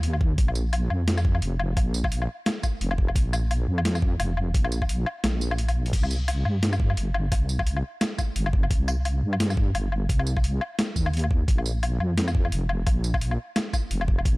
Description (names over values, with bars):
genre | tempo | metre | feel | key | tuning
half-time drum and bass | 173 BPM | 4/4 | swing 58% on 16ths, half-time | unclear | A4 = 440 Hz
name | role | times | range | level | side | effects
deep soft wobble bass | bass | 0.0-14.4 s | F1 to G2 | -25 LUFS | equal | chorus
boom bap sampler-style drum kit | drums | 0.0-14.3 s | crash cymbal, hi-hat, snare drum, tambourine, woodblock | -29 LUFS | left 1 dB | overdrive
electronic kick drum | drums | 0.2-14.3 s | none | -23 LUFS | equal | none
room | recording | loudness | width
little or no reverb | dark, warm production | -22 LUFS | side -23 dB against mid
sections
0.0-14.4 A section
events
kick drops out 5.2-5.9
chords
none